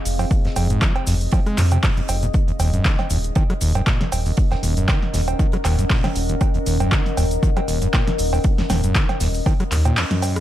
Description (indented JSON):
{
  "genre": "acid house",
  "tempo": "118 BPM",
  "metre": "4/4",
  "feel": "swing 55% on 16ths",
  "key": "unclear",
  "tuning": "A4 = 441 Hz",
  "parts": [
    { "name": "deep dark ambient pad", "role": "texture", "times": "0.0-10.4 s", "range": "C4 to Gb5", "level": "-27 LUFS", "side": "left 1 dB", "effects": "chorus, built-in reverb, sidechain pumping" },
    { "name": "round analog bass", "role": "bass", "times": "0.1-9.9 s", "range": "Eb1 to F2", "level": "-21 LUFS", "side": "equal", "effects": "sidechain pumping" },
    { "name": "punchy analog drum machine", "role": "drums", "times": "0.1-10.4 s", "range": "cowbell, handclaps, hi-hat, rim click, snare drum", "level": "-25 LUFS", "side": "right 2 dB", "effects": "overdrive, studio reverb" },
    { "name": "tight metal drum kit", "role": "drums", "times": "0.1-10.4 s", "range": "hi-hat, snare drum", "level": "-37 LUFS", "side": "right 3 dB", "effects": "sidechain pumping on hats, high-pass filter on hats, studio reverb, high-pass filter on snare, high-pass filter on room" },
    { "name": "cabasa", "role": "percussion", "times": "0.1-10.4 s", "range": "none", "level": "-34 LUFS", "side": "left 4 dB", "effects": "none" },
    { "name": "overdriven acid bass", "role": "riff", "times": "0.2-10.4 s", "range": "Eb2 to Ab3", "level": "-23 LUFS", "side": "equal", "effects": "sidechain pumping, digital delay" },
    { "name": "electronic kick drum", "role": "drums", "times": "0.3-9.6 s", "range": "none", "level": "-18 LUFS", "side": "equal", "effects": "overdrive, studio reverb" }
  ],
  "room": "little or no reverb",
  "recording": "dark, warm production",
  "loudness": "-17 LUFS",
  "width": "side -13 dB against mid",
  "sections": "0.0-10.4 A section",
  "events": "none",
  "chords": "0.0 Fm7; 2.3 Ebm7",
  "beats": "| 0.31 0.82 1.33 1.83 | 2.34 2.85 3.36 3.87 | 4.38 4.88 5.39 5.90 | 6.41 6.92 7.43 7.94 | 8.44 8.95 9.46 9.97"
}